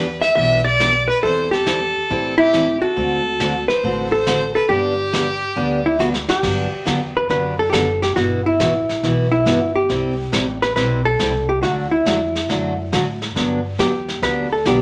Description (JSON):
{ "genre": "country, western swing", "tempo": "138 BPM", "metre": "4/4", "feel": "swing 67% on 8ths", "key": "G major", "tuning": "A4 = 436 Hz", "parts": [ { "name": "hollow-body jazz guitar", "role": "melody", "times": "0.0-14.8 s", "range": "E4 to E5", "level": "-21 LUFS", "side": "equal", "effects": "none" }, { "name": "clear fiddle", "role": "second line", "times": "0.0-6.2 s", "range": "G4 to E5", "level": "-24 LUFS", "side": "equal", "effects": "none" }, { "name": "picked steel-string acoustic guitar", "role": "accompaniment", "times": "0.0-14.8 s", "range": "B2 to A4", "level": "-25 LUFS", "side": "equal", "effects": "none" }, { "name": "upright bass", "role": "bass", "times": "0.0-14.8 s", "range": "F#1 to A2", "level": "-29 LUFS", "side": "equal", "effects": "none" }, { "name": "vintage brush drum kit", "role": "drums", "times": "0.2-14.8 s", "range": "brushed snare drum, crash cymbal, hi-hat, kick drum, snare drum", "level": "-28 LUFS", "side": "equal", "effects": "none" } ], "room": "wet studio reverb, RT60 0.7 s", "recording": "none", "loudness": "-19 LUFS", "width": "mono", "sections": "0.0-6.4 A section; 6.4-14.8 A section", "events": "drum fill 6.0-6.4", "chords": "0.0 Em7; 1.2 Am7/E; 3.0 D7; 4.7 G; 6.4 Gmaj7; 8.2 Emadd9/G; 9.9 C; 11.6 D; 13.4 Gmaj7" }